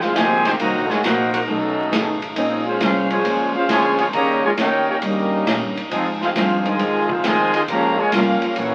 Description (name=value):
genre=jazz, big band swing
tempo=135 BPM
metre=4/4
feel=swing 67% on 8ths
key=unclear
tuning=A4 = 439 Hz
part: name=warm trumpet section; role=melody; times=0.0-8.7 s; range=Bb3 to Bb5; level=-23 LUFS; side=equal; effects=none
part: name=warm trombone section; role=second line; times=0.0-8.7 s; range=C3 to G4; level=-25 LUFS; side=equal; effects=none
part: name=picked old ladder-braced acoustic guitar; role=accompaniment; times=0.0-8.7 s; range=Gb2 to C5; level=-29 LUFS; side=equal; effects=none
part: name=brilliant trombone section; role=sustained chords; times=0.0-8.7 s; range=Bb2 to Ab4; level=-33 LUFS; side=equal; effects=none
part: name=upright bass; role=bass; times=0.0-8.7 s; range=Gb1 to Bb2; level=-30 LUFS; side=equal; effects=none
part: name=swinging big-band drum kit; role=drums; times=0.0-8.7 s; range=hi-hat, kick drum, ride cymbal, snare drum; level=-27 LUFS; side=equal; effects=none
room=wet club reverb, RT60 0.7 s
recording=very old 78 rpm record, vinyl crackle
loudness=-19 LUFS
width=mono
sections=0.0-8.7 A section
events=none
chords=0.0 Fm11; 0.6 Cm7b5; 1.5 B13; 2.4 Bbm9; 4.1 Eb7; 5.9 Ab6; 7.7 Gm7b5